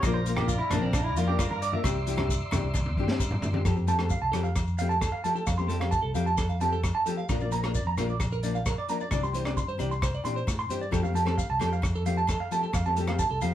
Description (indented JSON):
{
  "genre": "highlife guitar band",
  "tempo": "132 BPM",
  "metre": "4/4",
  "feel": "straight",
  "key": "F major",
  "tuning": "A4 = 440 Hz",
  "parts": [
    { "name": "nylon-string guitar", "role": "accompaniment", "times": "0.0-13.5 s", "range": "E3 to G4", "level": "-32 LUFS", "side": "left 6 dB", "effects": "none" },
    { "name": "tonewheel organ", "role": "sustained chords", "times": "0.0-3.6 s", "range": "D5 to C6", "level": "-38 LUFS", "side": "equal", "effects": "slow rotary speaker" },
    { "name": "clean electric guitar", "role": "arpeggios", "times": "0.0-13.5 s", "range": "C4 to C6", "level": "-30 LUFS", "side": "right 4 dB", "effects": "none" },
    { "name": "fingered electric bass", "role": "bass", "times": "0.0-13.5 s", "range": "Bb1 to Bb2", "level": "-30 LUFS", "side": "equal", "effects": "none" },
    { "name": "crunchy breakbeat drum kit", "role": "drums", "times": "0.0-13.5 s", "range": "hi-hat, kick drum, rim click, snare drum, toms", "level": "-31 LUFS", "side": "equal", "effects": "none" },
    { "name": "agogo bells", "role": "percussion", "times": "0.0-13.5 s", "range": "none", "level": "-43 LUFS", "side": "left 4 dB", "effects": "none" },
    { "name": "maracas", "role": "percussion", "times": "0.0-13.5 s", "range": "none", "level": "-43 LUFS", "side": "left 6 dB", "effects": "none" },
    { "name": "congas", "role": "percussion", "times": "0.4-3.6 s", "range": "none", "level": "-34 LUFS", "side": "right 1 dB", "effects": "none" }
  ],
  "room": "moderate studio reverb, RT60 0.6 s",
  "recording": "band playing live in one room",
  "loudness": "-25 LUFS",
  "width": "side -11 dB against mid",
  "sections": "0.0-3.7 A section; 3.7-13.5 B section",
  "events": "clean electric guitar solo 0.0-3.7; drum fill 2.7-3.7",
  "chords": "0.0 Bb; 1.8 Cadd9; 3.7 Fadd9; 7.3 Bb; 9.1 Cadd9; 10.9 Fadd9"
}